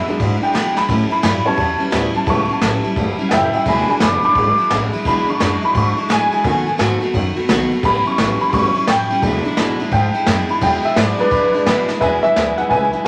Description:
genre	rockabilly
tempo	173 BPM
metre	4/4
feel	swing 64% on 8ths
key	E mixolydian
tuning	A4 = 440 Hz
part	honky-tonk upright piano	accompaniment	0.0-13.1 s	D#3 to D6	-20 LUFS	equal	none
part	picked steel-string acoustic guitar	accompaniment	0.0-13.1 s	E2 to F#4	-24 LUFS	equal	none
part	upright bass	bass	0.0-13.1 s	E1 to B2	-25 LUFS	equal	none
part	jazz brush drum kit	drums	0.1-13.1 s	hi-hat, kick drum, ride cymbal, snare drum	-23 LUFS	equal	none
part	warm upright piano	melody	12.0-13.1 s	E5 to G#5	-20 LUFS	equal	none
room	wet large studio reverb, RT60 0.9 s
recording	vinyl crackle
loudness	-17 LUFS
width	mono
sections	0.0-12.0 A section; 12.0-13.1 B section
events	honky-tonk piano solo 0.0-12.0; drum fill 0.7, 11.8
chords	0.0 E7; 0.9 A7; 3.7 E7; 6.4 B7; 7.8 A7; 9.2 E7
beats	0.20 0.55 | 0.89 1.24 1.58 1.93 | 2.28 2.62 2.97 3.32 | 3.67 4.01 4.36 4.71 | 5.05 5.40 5.75 6.09 | 6.44 6.79 7.14 7.49 | 7.83 8.18 8.53 8.88 | 9.23 9.57 9.92 10.27 | 10.62 10.97 11.31 11.66 | 12.01 12.36 12.71 13.06

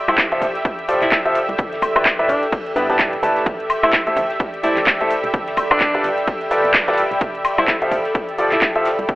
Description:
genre	piano house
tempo	128 BPM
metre	4/4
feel	swing 58% on 16ths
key	unclear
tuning	A4 = 440 Hz
part	analog string pad	sustained chords	0.0-9.2 s	G4 to E5	-26 LUFS	equal	ensemble chorus, sidechain pumping
part	warbly tape-like pad	texture	0.0-9.2 s	A4 to B5	-25 LUFS	equal	chorus, built-in reverb, phaser, sidechain pumping
part	bright alto saxophone	melody	0.1-8.7 s	B3 to E4	-25 LUFS	equal	tape echo
part	clear concert grand piano	riff	0.1-8.9 s	F3 to A5	-20 LUFS	equal	sidechain pumping
part	organ-like FM bass	bass	0.1-9.2 s	D1 to G2	-33 LUFS	equal	sidechain pumping
part	house drum kit	drums	0.1-9.2 s	handclaps, hi-hat, ride cymbal, woodblock	-19 LUFS	equal	overdrive
part	electronic kick drum	drums	0.2-9.2 s	none	-24 LUFS	equal	overdrive
part	modern studio drum kit	drums	0.2-9.2 s	hi-hat, ride cymbal, snare drum	-35 LUFS	left 1 dB	none
room	light reverb, small room ambience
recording	telephone sound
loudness	-15 LUFS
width	side -19 dB against mid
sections	0.0-9.2 A section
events	none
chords	0.0 Fmaj9; 1.6 Em7; 3.5 Am7; 5.3 G9; 7.2 Fmaj9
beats	0.18 0.65 1.12 | 1.59 2.06 2.52 2.99 | 3.46 3.93 4.40 4.87 | 5.34 5.81 6.28 6.74 | 7.21 7.68 8.15 8.62 | 9.09

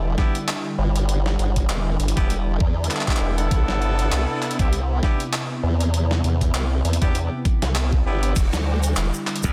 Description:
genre	glitch hop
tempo	99 BPM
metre	4/4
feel	swing 56% on 16ths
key	E minor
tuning	A4 = 442 Hz
part	warm analog pad	sustained chords	0.0-9.5 s	C3 to E4	-32 LUFS	equal	chorus, sidechain pumping
part	formant-sweep wobble bass	bass	0.0-9.1 s	E1 to E2	-24 LUFS	equal	chorus, tube saturation
part	clear horn section	stabs	0.2-9.5 s	B3 to A4	-31 LUFS	equal	vintage 12-bit sampler grit, sidechain pumping, low-pass filter, digital delay
part	boom bap sampler-style drum kit	drums	0.2-9.5 s	crash cymbal, handclaps, hi-hat, snare drum	-31 LUFS	equal	none
part	electronic kick drum	drums	0.2-9.5 s	none	-23 LUFS	equal	overdrive
part	egg shaker	percussion	8.4-9.5 s	none	-38 LUFS	equal	none
part	glassy slap bass	bass	9.4-9.5 s	E2	-26 LUFS	equal	none
room	light reverb, digital ambience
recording	dense, heavily limited modern master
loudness	-22 LUFS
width	mono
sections	0.0-9.5 A section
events	none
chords	0.0 Em7; 3.5 Cmaj7; 8.4 Em7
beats	0.48 | 1.09 1.69 2.30 2.91 | 3.51 4.12 4.72 5.33 | 5.94 6.54 7.15 7.75 | 8.36 8.97

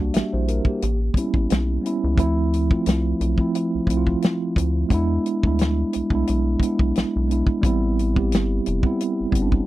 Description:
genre	R&B, neo-soul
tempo	88 BPM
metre	4/4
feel	swing 55% on 16ths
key	unclear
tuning	A4 = 440 Hz
part	mellow tine electric piano	accompaniment	0.0-9.7 s	F3 to E5	-22 LUFS	right 2 dB	medium stereo tremolo
part	rubbery square bass	bass	0.0-9.6 s	F1 to E2	-23 LUFS	left 1 dB	none
part	warm soul drum kit	drums	0.1-9.7 s	hi-hat, kick drum, snare drum	-21 LUFS	left 1 dB	none
room	light reverb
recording	dry, close 1970s-style studio recording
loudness	-19 LUFS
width	side -16 dB against mid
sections	0.0-9.7 A section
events	none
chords	0.0 Em7b5; 0.8 A7; 2.2 Dm7; 4.9 E7; 7.6 Am7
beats	0.13 0.81 1.49 | 2.18 2.86 3.54 4.22 | 4.90 5.58 6.27 6.95 | 7.63 8.31 8.99

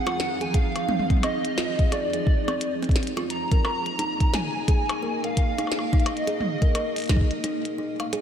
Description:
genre	IDM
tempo	87 BPM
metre	4/4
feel	swing 62% on 16ths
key	unclear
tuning	A4 = 438 Hz
part	warbly nostalgic lead	melody	0.0-8.1 s	D5 to Bb5	-29 LUFS	right 1 dB	ensemble chorus, cassette tape, digital delay
part	granular cloud pad	sustained chords	0.0-8.2 s	F3 to Eb5	-33 LUFS	equal	built-in reverb
part	kalimba	arpeggios	0.1-8.2 s	C4 to F5	-30 LUFS	right 1 dB	digital delay
part	glitchy drum kit	drums	0.1-8.2 s	hi-hat, percussion blips, snare drum, toms	-31 LUFS	left 1 dB	none
part	electronic kick drum	drums	0.5-7.3 s	none	-21 LUFS	equal	none
room	moderate lush hall reverb, RT60 3.0 s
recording	big arena sound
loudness	-22 LUFS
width	side -8 dB against mid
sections	0.0-8.2 A section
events	break 7.4-8.2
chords	0.0 Fm7; 3.3 Bb7sus4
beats	| 0.54 1.23 1.92 2.61 | 3.30 3.99 4.68 5.37 | 6.06 6.75 7.44 8.13

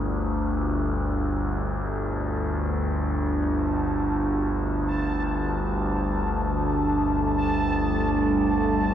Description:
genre	dark ambient drone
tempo	free time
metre	none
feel	none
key	unclear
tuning	A4 = 439 Hz
part	overtone-sweeping drone	drone	0.0-8.9 s	G1 to D2	-24 LUFS	equal	chorus, built-in reverb
part	deep dark ambient pad	sustained chords	5.5-8.9 s	G3 to A4	-28 LUFS	right 2 dB	chorus, built-in reverb
part	bubbling stepped-filter texture	texture	3.6-8.9 s	A5	-31 LUFS	equal	chorus, built-in reverb
room	wet cathedral reverb, RT60 5.2 s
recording	in a vast, echoing space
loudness	-23 LUFS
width	side -10 dB against mid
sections	0.0-8.9 A section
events	none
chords	0.0 Gsus2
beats	free time

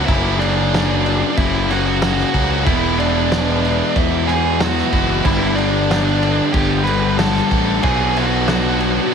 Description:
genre	quiet-loud alternative rock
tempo	93 BPM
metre	4/4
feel	straight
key	unclear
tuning	A4 = 441 Hz
part	high-gain lead guitar	melody	0.0-9.1 s	D4 to B5	-21 LUFS	equal	distortion
part	distorted electric guitar	riff	0.0-9.1 s	F#2 to E4	-22 LUFS	left 14 dB	overdrive
part	scooped high-gain guitar	riff	0.0-9.1 s	F#2 to E4	-23 LUFS	right 16 dB	distortion
part	fuzz fingered electric bass	bass	0.0-9.0 s	E1 to E2	-21 LUFS	equal	overdrive
part	loose indie drum kit	drums	0.1-9.0 s	crash cymbal, kick drum, snare drum	-22 LUFS	equal	none
part	fuzz guitar	riff	2.7-9.1 s	E2 to B3	-22 LUFS	right 2 dB	distortion
room	light reverb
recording	none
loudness	-14 LUFS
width	side -6 dB against mid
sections	0.0-9.1 A section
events	none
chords	0.1 F#; 2.7 E; 5.3 G; 7.8 Bm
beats	| 0.07 0.72 1.37 2.02 | 2.66 3.31 3.96 4.61 | 5.25 5.90 6.55 7.20 | 7.85 8.49

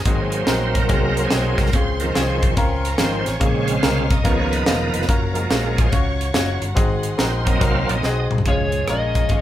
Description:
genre	uptempo gospel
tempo	143 BPM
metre	4/4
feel	swing 64% on 8ths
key	Db major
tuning	A4 = 440 Hz
part	bright tonewheel organ	sustained chords	0.0-9.4 s	Db3 to F5	-23 LUFS	right 2 dB	slow rotary speaker, overdrive, chorus vibrato
part	clear studio string section	sustained chords	0.0-9.4 s	Db5 to Eb6	-32 LUFS	equal	none
part	fingered electric bass	bass	0.0-9.4 s	Fb1 to Db2	-24 LUFS	equal	none
part	bright grand piano	accompaniment	0.1-9.4 s	Ab2 to Db5	-25 LUFS	left 2 dB	none
part	crisp fusion drum kit	drums	0.1-9.4 s	hi-hat, kick drum, rim click, snare drum, toms	-21 LUFS	equal	none
part	overdriven slide guitar	melody	8.5-9.4 s	Db5 to Eb5	-23 LUFS	left 1 dB	none
room	moderate large studio reverb, RT60 0.9 s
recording	band playing live in one room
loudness	-17 LUFS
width	side -12 dB against mid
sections	0.0-8.5 A section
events	tonewheel organ solo 0.0-8.5; drum fill 8.0-8.5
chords	0.1 Ab7; 1.7 Dbmaj7; 3.4 Bbm7; 4.3 Db13; 5.1 Gbmaj7; 6.8 Ab7; 8.5 Db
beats	| 0.06 0.48 0.90 1.32 | 1.74 2.16 2.58 3.00 | 3.42 3.84 4.26 4.68 | 5.09 5.51 5.93 6.35 | 6.77 7.19 7.61 8.03 | 8.46 8.88 9.30

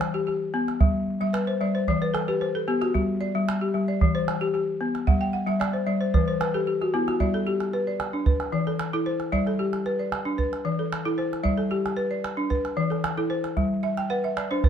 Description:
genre	west african traditional, West African string and xylophone music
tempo	113 BPM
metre	4/4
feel	straight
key	G major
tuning	A4 = 439 Hz
part	balafon	arpeggios	0.0-14.7 s	E3 to G5	-24 LUFS	left 2 dB	none
part	calabash	percussion	0.0-14.7 s	none	-26 LUFS	right 3 dB	none
room	moderate studio reverb, RT60 0.6 s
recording	dark, warm production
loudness	-23 LUFS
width	side -8 dB against mid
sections	0.0-7.2 A section; 7.2-14.7 B section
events	balafon fill 1.2-2.9, 5.1-7.2, 13.8-14.7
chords	0.0 Em (rootless); 0.8 N.C.; 1.9 Em; 2.9 G5; 4.0 Em; 5.1 N.C.; 6.1 Em; 7.2 G; 8.3 E5; 9.3 G; 10.4 E5; 11.4 G; 12.5 E5; 13.6 G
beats	0.27 | 0.80 1.34 1.87 2.40 | 2.94 3.47 4.00 4.54 | 5.07 5.60 6.13 6.67 | 7.20 7.73 8.26 8.79 | 9.32 9.85 10.38 10.91 | 11.45 11.97 12.51 13.04 | 13.57 14.10 14.63

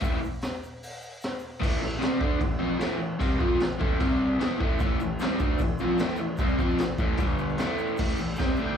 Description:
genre	garage rock duo or trio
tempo	151 BPM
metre	4/4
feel	straight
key	A minor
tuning	A4 = 442 Hz
part	crunchy overdriven guitar	riff	0.0-8.8 s	G2 to F4	-26 LUFS	equal	slapback echo
part	raw garage drum kit	drums	0.0-8.5 s	crash cymbal, hi-hat, kick drum, snare drum	-28 LUFS	equal	none
part	egg shaker	percussion	0.0-1.5, 4.8-8.7 s	none	-58 LUFS	left 3 dB	none
part	octave-fuzz lead guitar	melody	8.4-8.8 s	E5 to G5	-39 LUFS	equal	distortion, plate reverb
room	light reverb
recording	live gig heard through the venue's PA, club reverb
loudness	-24 LUFS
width	side -8 dB against mid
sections	0.0-1.6 A section; 1.6-8.0 B section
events	none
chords	0.0 Am; 4.0 C5; 4.4 Am; 7.2 G5; 7.6 A5; 8.0 Am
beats	| 0.02 0.42 0.82 1.22 | 1.62 2.01 2.41 2.81 | 3.21 3.61 4.00 4.40 | 4.80 5.20 5.60 5.99 | 6.39 6.79 7.19 7.59 | 7.98 8.38

